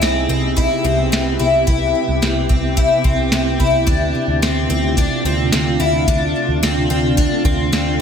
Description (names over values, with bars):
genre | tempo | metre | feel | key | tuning
dream pop | 109 BPM | 4/4 | straight | C major | A4 = 441 Hz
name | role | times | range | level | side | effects
shimmering ambient pad | sustained chords | 0.0-8.0 s | C3 to G4 | -20 LUFS | right 1 dB | chorus, built-in reverb
picked twelve-string acoustic guitar | arpeggios | 0.0-8.0 s | C4 to E4 | -19 LUFS | left 3 dB | analog chorus, ping-pong delay
vintage muted picked electric bass | bass | 0.0-8.0 s | C2 to D2 | -21 LUFS | equal | none
soft vintage rhythm box | drums | 0.0-7.9 s | hi-hat, kick drum, snare drum | -20 LUFS | equal | none
room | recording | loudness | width
moderate concert hall reverb, RT60 1.8 s | none | -14 LUFS | side -7 dB against mid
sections
0.0-8.0 A section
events
none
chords
0.0 Cmaj7; 3.9 Dm7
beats
0.02 0.57 1.12 | 1.68 2.23 2.78 3.33 | 3.88 4.43 4.98 5.53 | 6.08 6.63 7.18 7.73